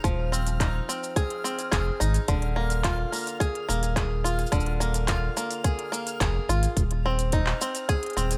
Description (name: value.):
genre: folktronica.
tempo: 107 BPM.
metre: 4/4.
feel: straight.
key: unclear.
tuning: A4 = 440 Hz.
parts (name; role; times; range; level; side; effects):
bluegrass banjo; arpeggios; 0.0-8.4 s; D3 to Ab4; -31 LUFS; equal; digital delay.
warm sub bass; bass; 0.0-8.4 s; Eb1 to Ab1; -29 LUFS; equal; none.
electronic kick drum; drums; 0.0-8.0 s; none; -28 LUFS; equal; none.
organic electronic drum kit; drums; 0.0-8.4 s; handclaps, hi-hat, shaker; -34 LUFS; equal; none.
backwards swelling texture; texture; 0.0-8.4 s; F6; -43 LUFS; equal; built-in reverb.
room: little or no reverb.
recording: none.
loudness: -26 LUFS.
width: mono.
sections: 0.0-8.4 A section.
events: none.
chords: 0.0 Fm7/Eb; 2.3 Bb7/Eb; 6.8 Ab/Eb.